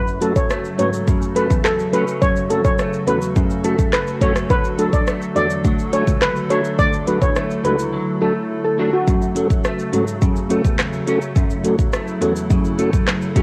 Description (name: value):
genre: dancehall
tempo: 105 BPM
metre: 4/4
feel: straight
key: F# minor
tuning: A4 = 441 Hz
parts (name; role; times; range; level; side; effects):
- steel pan; melody; 0.0-9.0 s; F#4 to D5; -23 LUFS; equal; none
- hollow soft pad; sustained chords; 0.1-13.4 s; C#3 to A4; -28 LUFS; equal; chorus, sidechain pumping, cassette tape
- semi-hollow electric guitar; arpeggios; 0.0-13.4 s; F#2 to D4; -30 LUFS; equal; ensemble chorus, cassette tape
- rich cello; bass; 0.0-13.4 s; C#2 to G#2; -29 LUFS; equal; none
- afro-pop drum kit; drums; 0.1-13.4 s; handclaps, hi-hat, kick drum, rim click, shaker; -21 LUFS; equal; cassette tape
- mellow tonewheel organ; accompaniment; 0.2-13.4 s; F#3 to B4; -23 LUFS; equal; fast rotary speaker, cassette tape
room: digital ambience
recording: home recording on cassette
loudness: -18 LUFS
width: mono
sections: 0.0-13.4 A section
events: drums muted 7.9-9.1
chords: 0.0 F#m; 4.5 D; 9.1 F#m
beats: 0.50 1.07 1.65 | 2.22 2.79 3.36 3.93 | 4.50 5.07 5.64 6.22 | 6.79 7.36 7.93 8.50 | 9.07 9.64 10.22 10.79 | 11.36 11.93 12.50 13.07